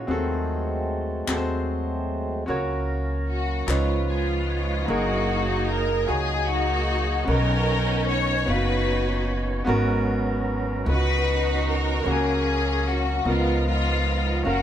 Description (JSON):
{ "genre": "slow gospel", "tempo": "50 BPM (dotted quarters)", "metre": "6/8", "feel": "straight", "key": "F# major", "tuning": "A4 = 439 Hz", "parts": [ { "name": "clear grand piano", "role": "accompaniment", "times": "0.0-14.6 s", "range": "G#2 to E#5", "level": "-28 LUFS", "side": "equal", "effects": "none" }, { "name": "percussive tonewheel organ", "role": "sustained chords", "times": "0.0-14.6 s", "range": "C#3 to G#5", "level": "-31 LUFS", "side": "right 3 dB", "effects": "fast rotary speaker" }, { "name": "upright bass", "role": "bass", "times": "0.0-14.6 s", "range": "F#1 to D#2", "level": "-26 LUFS", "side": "equal", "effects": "none" }, { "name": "group handclap", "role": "percussion", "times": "1.3-4.1 s", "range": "none", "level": "-31 LUFS", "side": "left 4 dB", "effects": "none" }, { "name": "warm studio string section", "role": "melody", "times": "3.3-14.6 s", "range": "G#3 to C#5", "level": "-25 LUFS", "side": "left 1 dB", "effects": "none" } ], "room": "moderate studio reverb, RT60 0.9 s", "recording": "band playing live in one room", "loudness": "-22 LUFS", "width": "side -10 dB against mid", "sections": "0.0-4.9 A section; 4.9-14.6 B section", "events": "tonewheel organ fill 3.7-4.9", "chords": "0.1 G#7b9/D#; 2.5 F#/C#; 3.7 C#9; 4.9 F#69; 7.3 Bmaj9; 9.7 G#m11; 10.9 C#9sus4; 12.1 F#/C#; 13.3 C#13" }